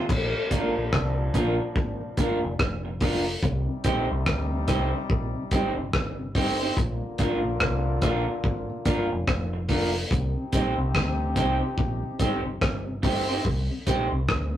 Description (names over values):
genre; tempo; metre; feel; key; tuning
roots reggae; 72 BPM; 4/4; swing 61% on 16ths; C minor; A4 = 441 Hz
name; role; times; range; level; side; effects
bright trombone section; second line; 0.0-13.0 s; Bb2 to G4; -34 LUFS; left 2 dB; none
electric guitar through a small old amp; accompaniment; 0.0-14.1 s; Bb3 to C5; -27 LUFS; right 2 dB; none
deep dub fingered electric bass; bass; 0.1-14.6 s; F1 to D2; -30 LUFS; equal; none
cloth-damped thuddy drum kit; drums; 0.1-14.5 s; crash cymbal, hi-hat, kick drum, rim click; -26 LUFS; equal; none
mellow tonewheel organ; accompaniment; 0.3-14.6 s; Bb2 to Eb4; -35 LUFS; left 1 dB; chorus vibrato, slow rotary speaker, tape echo
room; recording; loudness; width
wet studio reverb, RT60 0.6 s; rough rehearsal-room recording; -23 LUFS; side -12 dB against mid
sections
0.1-13.4 A section; 13.4-14.6 B section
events
none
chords
0.1 Bb; 3.4 Cm; 6.8 Bb; 10.1 Cm